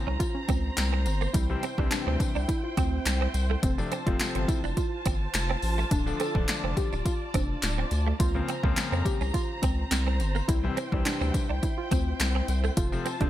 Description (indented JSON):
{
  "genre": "dance-pop",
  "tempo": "105 BPM",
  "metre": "4/4",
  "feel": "straight",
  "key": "F major",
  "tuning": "A4 = 439 Hz",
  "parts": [
    { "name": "soft round pluck", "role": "melody", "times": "0.0-13.3 s", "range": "C4 to A4", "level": "-35 LUFS", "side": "equal", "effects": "chorus, ping-pong delay" },
    { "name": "warm studio string section", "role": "sustained chords", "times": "0.0-13.3 s", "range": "Db3 to Bb5", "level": "-36 LUFS", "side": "right 1 dB", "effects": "sidechain pumping" },
    { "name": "direct-recorded clean electric guitar", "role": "riff", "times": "0.1-13.3 s", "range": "A3 to D4", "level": "-36 LUFS", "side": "right 7 dB", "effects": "ensemble chorus" },
    { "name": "saturated sub bass", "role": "bass", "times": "0.1-13.3 s", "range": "D1 to F2", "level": "-28 LUFS", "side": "equal", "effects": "sidechain pumping" },
    { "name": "punchy analog drum machine", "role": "drums", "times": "0.2-13.3 s", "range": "handclaps, hi-hat, kick drum, snare drum", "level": "-28 LUFS", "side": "equal", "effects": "overdrive, gated reverb" },
    { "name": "tambourine", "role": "percussion", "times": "0.2-13.2 s", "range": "none", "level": "-42 LUFS", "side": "left 10 dB", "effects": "none" },
    { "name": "clear concert grand piano", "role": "accompaniment", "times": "1.3-13.3 s", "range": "C3 to D4", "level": "-34 LUFS", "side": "left 4 dB", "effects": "sidechain pumping" }
  ],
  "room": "light reverb",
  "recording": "bright 1980s-style digital production",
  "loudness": "-25 LUFS",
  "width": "side -13 dB against mid",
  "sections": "0.0-13.3 A section",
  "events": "none",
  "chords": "0.0 Bbmadd9; 1.3 C; 3.6 F; 5.9 Dm; 8.2 Bbmadd9; 10.5 C; 12.8 F"
}